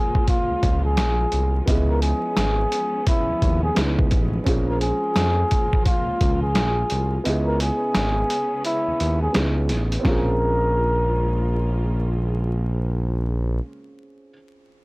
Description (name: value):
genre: hip hop, boom-bap hip-hop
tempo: 86 BPM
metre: 4/4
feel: swing 62% on 16ths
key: Bb minor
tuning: A4 = 444 Hz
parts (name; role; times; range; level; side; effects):
- trumpet with bucket mute; melody; 0.0-12.1 s; Fb4 to Bb4; -24 LUFS; equal; high-pass filter, low-pass filter
- dark upright piano; accompaniment; 0.0-14.8 s; Cb4 to Eb5; -30 LUFS; right 2 dB; cassette tape, high-pass filter, low-pass filter
- warm studio string section; sustained chords; 0.0-13.6 s; Db3 to F4; -32 LUFS; left 1 dB; high-pass filter, low-pass filter
- trip hop sampler-style drum kit; drums; 0.1-10.3 s; hi-hat, kick drum, snare drum; -22 LUFS; equal; none
- smooth synth bass; bass; 0.5-13.6 s; Ab1 to F2; -22 LUFS; equal; none
room: little or no reverb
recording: dry, gritty hardware recording, transformer saturation, vinyl crackle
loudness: -19 LUFS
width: side -25 dB against mid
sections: 0.0-10.0 A section; 10.0-12.8 B section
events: kick muted 7.3-10.0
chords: 0.0 Bbm7; 1.7 Dbm7; 4.5 Bbm7; 7.3 Dbm7; 10.0 Bbm7